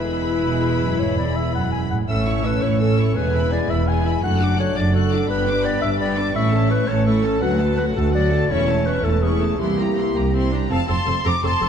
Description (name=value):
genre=cinematic, heroic adventure film score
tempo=111 BPM (dotted quarters)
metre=12/8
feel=straight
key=A major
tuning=A4 = 440 Hz
part: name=warm symphonic violin section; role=melody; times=0.0-11.7 s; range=F#5 to F#6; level=-31 LUFS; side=left 4 dB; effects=none
part: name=mellow clarinet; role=second line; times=0.0-10.5 s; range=G4 to G#5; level=-24 LUFS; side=equal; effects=none
part: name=rich symphonic violin section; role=second line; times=0.0-11.7 s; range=C#4 to Bb5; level=-30 LUFS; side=left 1 dB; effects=none
part: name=rich symphonic viola section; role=accompaniment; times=0.0-11.7 s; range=E3 to A4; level=-28 LUFS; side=equal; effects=none
part: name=warm French horn section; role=sustained chords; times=0.0-10.5 s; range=G3 to F#4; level=-25 LUFS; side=left 5 dB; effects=none
part: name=rich symphonic cello section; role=bass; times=0.0-11.7 s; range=C2 to B2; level=-24 LUFS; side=right 2 dB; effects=none
part: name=rich symphonic double bass section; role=bass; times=0.0-11.7 s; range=E1 to D2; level=-23 LUFS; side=right 3 dB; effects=none
part: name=silver concert flute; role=second line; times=10.7-11.7 s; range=A5 to D6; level=-24 LUFS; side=left 2 dB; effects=none
room=wet scoring stage reverb, RT60 2.0 s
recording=dark, warm production, nothing above 10.4 kHz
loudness=-17 LUFS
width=side -7 dB against mid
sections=0.0-10.7 A section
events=none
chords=0.0 E; 2.1 A; 3.2 E; 4.2 D/F#; 5.3 G; 6.4 A; 7.4 D; 8.5 A/E; 9.6 C7; 10.7 F